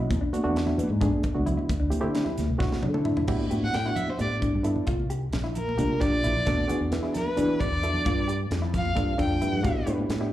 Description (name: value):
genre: electric jazz fusion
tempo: 264 BPM (eighths)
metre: 7/8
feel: straight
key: A dorian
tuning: A4 = 439 Hz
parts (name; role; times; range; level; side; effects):
- reed electric piano; accompaniment; 0.0-10.3 s; A3 to A4; -30 LUFS; right 1 dB; fast tremolo, slapback echo
- mellow electric guitar; stabs; 0.0-10.3 s; D4 to G4; -34 LUFS; left 2 dB; lush chorus, slapback echo
- fretless electric bass; bass; 0.0-10.3 s; Bb1 to E3; -28 LUFS; equal; ensemble chorus
- tight funk drum kit; drums; 0.1-10.2 s; crash cymbal, hi-hat, kick drum, snare drum, toms; -30 LUFS; equal; none
- congas; percussion; 0.1-10.3 s; none; -34 LUFS; right 1 dB; slapback echo
- rich violin; melody; 3.6-9.8 s; Bb4 to G5; -30 LUFS; equal; slapback echo
room: small room reverb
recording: live gig heard through the venue's PA, club reverb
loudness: -23 LUFS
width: side -13 dB against mid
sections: 0.0-3.3 A section; 3.3-10.3 B section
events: drum fill 2.6-3.3, 9.3-9.6; violin solo 3.3-10.3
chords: 0.1 E9sus4; 1.7 D9sus4; 3.3 A9sus4; 4.9 C9sus4; 6.5 E9sus4; 8.1 G9sus4; 9.6 A9sus4